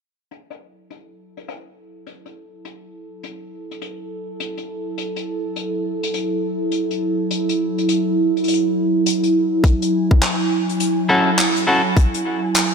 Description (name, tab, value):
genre	glitch hop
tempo	103 BPM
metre	4/4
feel	swing 63% on 16ths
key	F# minor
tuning	A4 = 437 Hz
part	warbly tape-like pad	sustained chords	2.3-12.7 s	F#3 to G#5	-20 LUFS	right 1 dB	chorus, built-in reverb, sidechain pumping
part	unplugged drum kit	drums	0.3-12.7 s	handclaps, hi-hat	-23 LUFS	left 2 dB	low-pass filter on hats, low-pass filter on snare, low-pass filter on room
part	electronic kick drum	drums	9.6-12.1 s	none	-13 LUFS	left 1 dB	none
part	semi-hollow electric guitar	stabs	11.1-11.8 s	C#4 to A4	-18 LUFS	left 1 dB	sidechain pumping, tape echo
room	wet lush hall reverb, RT60 2.5 s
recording	dreamy mix soaked in reverb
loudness	-17 LUFS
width	side -6 dB against mid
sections	0.3-12.7 A section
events	filter sweep on drum 0.3-12.7; filter sweep on ambient pad 0.3-12.7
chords	0.3 F#m7